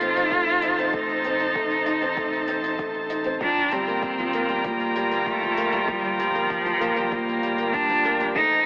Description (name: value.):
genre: piano and strings electronica.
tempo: 97 BPM.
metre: 4/4.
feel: straight.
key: G minor.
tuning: A4 = 440 Hz.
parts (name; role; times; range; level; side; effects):
warm cello; melody; 0.0-8.7 s; F3 to F4; -24 LUFS; equal; none.
rich string quartet; sustained chords; 0.0-8.7 s; Eb3 to Bb5; -26 LUFS; equal; sidechain pumping.
warm upright piano; riff; 0.0-8.5 s; F3 to Eb4; -27 LUFS; equal; none.
round analog bass; bass; 0.0-8.7 s; G1 to A1; -45 LUFS; equal; sidechain pumping.
hi-hat; drums; 0.0-8.6 s; none; -47 LUFS; right 1 dB; none.
electronic kick drum; drums; 0.3-8.5 s; none; -36 LUFS; equal; overdrive.
room: moderate lush hall reverb, RT60 2.6 s.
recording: telephone sound.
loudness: -21 LUFS.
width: side -32 dB against mid.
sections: 0.0-8.7 A section.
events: none.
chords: 0.0 Adim; 3.4 Gm7.